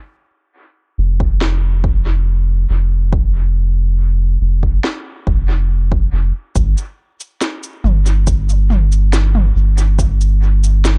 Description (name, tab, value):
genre	ambient dub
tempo	70 BPM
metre	4/4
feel	straight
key	unclear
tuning	A4 = 440 Hz
part	soft dub sub bass	bass	1.0-11.0 s	F1 to G1	-15 LUFS	equal	none
part	electronic kick drum	drums	1.2-10.2 s	none	-20 LUFS	equal	studio reverb
part	organic electronic drum kit	drums	1.4-11.0 s	shaker, snare drum, toms	-25 LUFS	equal	studio reverb, dub echo
room	little or no reverb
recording	none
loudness	-15 LUFS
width	mono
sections	0.0-6.6 A section; 6.6-11.0 B section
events	none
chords	none